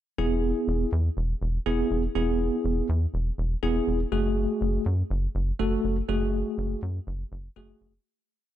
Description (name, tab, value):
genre	synth-pop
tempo	122 BPM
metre	4/4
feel	straight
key	F# minor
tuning	A4 = 440 Hz
part	bell-like tine electric piano	accompaniment	0.2-7.9 s	A3 to A4	-27 LUFS	equal	fast stereo tremolo
part	rubbery square bass	bass	0.2-8.0 s	E1 to F#2	-27 LUFS	equal	none
room	light reverb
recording	dark, warm production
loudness	-24 LUFS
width	side -12 dB against mid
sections	0.2-8.1 verse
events	fade-out 6.1-8.1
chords	0.2 E; 4.1 F#madd9